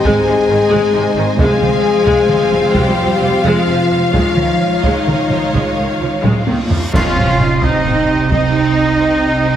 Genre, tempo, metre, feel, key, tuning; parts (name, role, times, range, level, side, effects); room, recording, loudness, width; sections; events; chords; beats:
cinematic, epic orchestral film score; 88 BPM (dotted quarters); 12/8; straight; C phrygian; A4 = 438 Hz
warm symphonic violin section; melody; 0.0-9.6 s; Eb5 to Ab5; -25 LUFS; left 3 dB
warm symphonic violin section; second line; 0.0-9.6 s; Eb4 to F5; -23 LUFS; left 2 dB
rich symphonic viola section; accompaniment; 0.0-9.6 s; C3 to F4; -21 LUFS; right 1 dB
dark symphonic string section; sustained chords; 0.0-6.9 s; F3 to F5; -21 LUFS; equal
mellow French horn section; sustained chords; 0.0-9.5 s; G3 to Ab4; -16 LUFS; left 5 dB
rich symphonic cello section; bass; 0.0-9.6 s; Eb3 to F4; -19 LUFS; right 3 dB
taiko ensemble; drums; 0.0-8.7 s; -18 LUFS; equal
clear studio double bass section; bass; 0.1-9.6 s; F1 to Db2; -20 LUFS; right 4 dB
reverse cymbal and impact; sound effects; 6.5-9.6 s; -28 LUFS; equal
cymbal swell, clash cymbals and concert bass drum; percussion; 4.2-7.8 s; -26 LUFS; equal
warm trumpet; stabs; 6.9-9.6 s; Eb4 to F4; -19 LUFS; right 2 dB
timpani; percussion; 6.9-7.6 s; C3; -26 LUFS; equal
moderate scoring stage reverb, RT60 1.7 s; heavily compressed radio sound; -11 LUFS; side -10 dB against mid
0.0-6.9 A section; 6.9-9.6 B section
drum fill 6.2-6.9; reverse cymbal 6.5-6.9; band accent 6.9-7.4; impact 6.9-9.6
0.0 Ab; 1.4 Fmadd9; 4.2 Dbadd9; 6.9 Cm
0.06 0.73 | 1.41 2.09 2.77 3.46 | 4.15 4.85 5.54 6.24 | 6.94 7.62 8.30 8.99